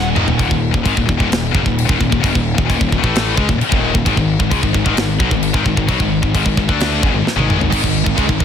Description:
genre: heavy metal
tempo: 131 BPM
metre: 4/4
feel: straight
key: Eb minor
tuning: A4 = 440 Hz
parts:
  - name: high-gain distorted guitar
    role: riff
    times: 0.0-0.4, 7.7-8.4 s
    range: Eb2 to Ab3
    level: -21 LUFS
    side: right 15 dB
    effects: distortion
  - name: scooped high-gain guitar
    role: riff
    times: 0.0-8.4 s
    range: Eb2 to D4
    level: -20 LUFS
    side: right 1 dB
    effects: distortion
  - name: tight distorted guitar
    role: riff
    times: 0.0-8.4 s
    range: Eb2 to D4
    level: -20 LUFS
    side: left 12 dB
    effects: distortion
  - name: fuzz picked electric bass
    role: bass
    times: 0.0-8.4 s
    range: Eb1 to D2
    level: -20 LUFS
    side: right 1 dB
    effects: overdrive
  - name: tight metal drum kit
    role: drums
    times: 0.2-8.4 s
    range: crash cymbal, kick drum, snare drum, toms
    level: -18 LUFS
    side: equal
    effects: none
room: studio reverb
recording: dense, heavily limited modern master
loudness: -13 LUFS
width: side -8 dB against mid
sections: 0.4-8.4 A section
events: drum fill 0.0-0.4, 7.3-7.7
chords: 0.4 Ebm; 4.0 Ab5

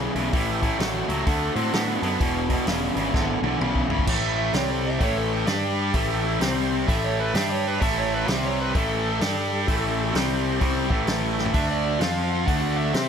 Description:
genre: blues rock power trio and southern rock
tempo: 128 BPM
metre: 4/4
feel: swing 62% on 8ths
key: unclear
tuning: A4 = 442 Hz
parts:
  - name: overdriven tonewheel organ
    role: sustained chords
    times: 0.0-13.1 s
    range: F3 to D5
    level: -35 LUFS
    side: right 3 dB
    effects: slow rotary speaker, chorus vibrato, plate reverb
  - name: distorted electric guitar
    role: riff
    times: 0.0-13.1 s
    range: E2 to C5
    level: -24 LUFS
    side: equal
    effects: overdrive
  - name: growling picked electric bass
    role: bass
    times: 0.0-13.1 s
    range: E1 to C3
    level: -29 LUFS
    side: equal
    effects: overdrive
  - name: vintage drum kit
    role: drums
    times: 0.2-13.1 s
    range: crash cymbal, hi-hat, kick drum, snare drum, toms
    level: -28 LUFS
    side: equal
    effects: none
  - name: smooth overdriven lead guitar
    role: second line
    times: 4.4-13.1 s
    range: G4 to F#5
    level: -31 LUFS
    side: right 5 dB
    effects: plate reverb
room: light reverb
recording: none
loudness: -21 LUFS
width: side -7 dB against mid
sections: 0.0-4.1 A section; 4.1-13.1 B section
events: drum fill 3.1-4.1, 11.3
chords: 0.3 A7; 1.3 D7; 2.2 E7; 4.1 A7; 4.5 C5; 5.0 A7; 5.5 G5; 5.9 A7; 6.4 C5; 6.9 A7; 7.3 G5; 7.8 A7; 8.3 C5; 8.7 A7; 9.2 G5; 9.7 A7; 10.1 C5; 10.6 A7; 11.5 D7; 12.0 F5; 12.5 D7

